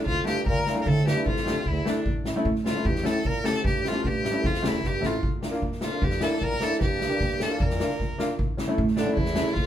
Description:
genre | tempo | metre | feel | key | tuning
klezmer | 152 BPM | 4/4 | straight | unclear | A4 = 438 Hz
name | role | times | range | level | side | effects
clear violin | melody | 0.0-9.7 s | D4 to Bb4 | -29 LUFS | equal | none
trombone with cup mute | second line | 0.0-9.7 s | E2 to D3 | -32 LUFS | left 2 dB | none
upright bass | bass | 0.1-9.7 s | E1 to D3 | -30 LUFS | right 1 dB | none
street-band drum kit | drums | 0.1-9.7 s | kick drum, snare drum | -28 LUFS | equal | none
clear upright piano | accompaniment | 0.2-9.5 s | A3 to G4 | -29 LUFS | equal | none
room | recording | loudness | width
moderate studio reverb, RT60 0.8 s | band playing live in one room | -23 LUFS | side -11 dB against mid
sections
0.0-9.7 A section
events
drum fill 4.8-5.2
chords
0.0 Dm; 2.1 A; 5.2 Bb; 8.4 A

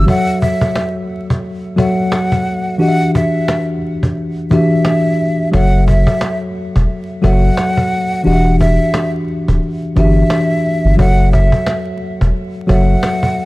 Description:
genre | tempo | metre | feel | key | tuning
hip hop, boom-bap hip-hop | 88 BPM | 4/4 | swing 58% on 16ths | F# phrygian | A4 = 440 Hz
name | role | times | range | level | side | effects
breathy hollow jazz flute | melody | 0.0-13.5 s | E5 to F#5 | -20 LUFS | equal | tape echo
mellow tine electric piano | accompaniment | 0.0-13.5 s | E3 to E5 | -16 LUFS | left 1 dB | medium stereo tremolo
saturated sub bass | bass | 0.0, 5.5-13.0 s | D1 to G1 | -12 LUFS | equal | none
cajon | drums | 0.1-13.5 s | none | -18 LUFS | equal | none
room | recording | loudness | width
small room ambience | dark, warm production, vinyl crackle | -12 LUFS | side -20 dB against mid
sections
0.1-13.5 A section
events
break 0.1-5.5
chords
0.1 F#m7; 2.8 Em7; 5.5 F#m7; 8.3 Em7; 11.0 F#m7

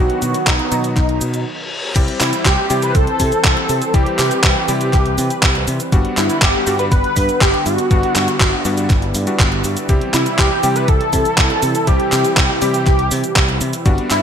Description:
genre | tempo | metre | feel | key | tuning
italo disco | 121 BPM | 4/4 | straight | unclear | A4 = 441 Hz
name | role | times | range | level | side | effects
wide unison lead | melody | 0.0-14.2 s | D#4 to B4 | -19 LUFS | equal | ensemble chorus, ping-pong delay
warm analog pad | sustained chords | 0.0-14.2 s | C3 to F#5 | -24 LUFS | right 2 dB | wide subtle chorus
clear electric grand piano | stabs | 0.0-14.2 s | F#3 to G4 | -24 LUFS | left 3 dB | none
growling fingered electric bass | bass | 0.0-14.2 s | G1 to C3 | -21 LUFS | equal | overdrive
detuned 8-bit digital drum machine | drums | 0.1-14.2 s | cabasa, crash cymbal, handclaps, hi-hat | -19 LUFS | equal | overdrive, gated reverb
electronic kick drum | drums | 0.5-14.0 s | none | -16 LUFS | equal | overdrive
reverse cymbal | sound effects | 1.2-2.0 s | none | -27 LUFS | left 3 dB | none
room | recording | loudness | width
light reverb, digital ambience | bright 1980s-style digital production | -13 LUFS | side -8 dB against mid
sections
0.0-2.0 A section; 2.0-14.2 B section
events
reverse cymbal 1.2-2.0; break 1.5-2.0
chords
0.0 B; 2.0 C; 5.9 Gmaj7; 9.9 C

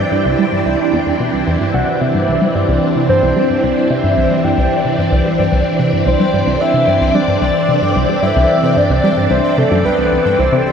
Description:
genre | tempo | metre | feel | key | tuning
ambient, sequencer-driven space music | 111 BPM | 4/4 | straight | C major | A4 = 439 Hz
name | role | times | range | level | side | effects
soft octave-layered synth lead | melody | 0.0-10.7 s | A4 to G5 | -17 LUFS | equal | chorus, vintage 12-bit sampler grit, shimmer reverb, ping-pong delay
phased string machine | sustained chords | 0.0-10.7 s | E3 to G5 | -16 LUFS | equal | ensemble chorus, phaser, shimmer reverb
tight sequenced synth | riff | 0.0-10.7 s | C2 to G3 | -17 LUFS | equal | chorus, ping-pong delay
pulsing gated texture | texture | 0.0-10.7 s | D5 to G5 | -27 LUFS | left 1 dB | chorus, built-in reverb, shimmer reverb
room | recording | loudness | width
wet huge ambient reverb, RT60 7.9 s | none | -12 LUFS | side -7 dB against mid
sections
0.0-10.7 A section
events
none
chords
0.0 Cadd9

